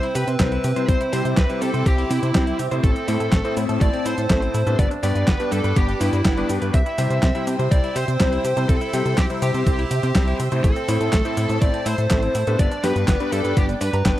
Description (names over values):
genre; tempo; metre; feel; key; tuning
italo disco; 123 BPM; 4/4; straight; C major; A4 = 438 Hz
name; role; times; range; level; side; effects
high-gain lead guitar; melody; 0.0-14.2 s; E4 to E5; -26 LUFS; equal; distortion, tape echo
lush unison pad; sustained chords; 0.0-14.2 s; C4 to E6; -29 LUFS; equal; chorus, phaser
direct-recorded clean electric guitar; arpeggios; 0.0-14.2 s; A3 to Bb5; -31 LUFS; right 2 dB; vintage 12-bit sampler grit, tape echo
bright electric grand piano; stabs; 0.0-14.2 s; G2 to C5; -27 LUFS; left 2 dB; none
clean 12-bit digital drum machine; drums; 0.0-14.2 s; cabasa, handclaps, hi-hat, snare drum; -25 LUFS; equal; overdrive
chorused synth bass; bass; 0.2-14.1 s; G1 to C3; -23 LUFS; equal; none
electronic kick drum; drums; 0.4-14.2 s; none; -20 LUFS; equal; overdrive
room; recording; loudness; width
little or no reverb; dry, close 1970s-style studio recording; -18 LUFS; side -14 dB against mid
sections
0.0-14.2 A section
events
none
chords
0.0 C; 2.8 Am; 4.8 G; 6.7 C; 10.6 Am; 12.6 G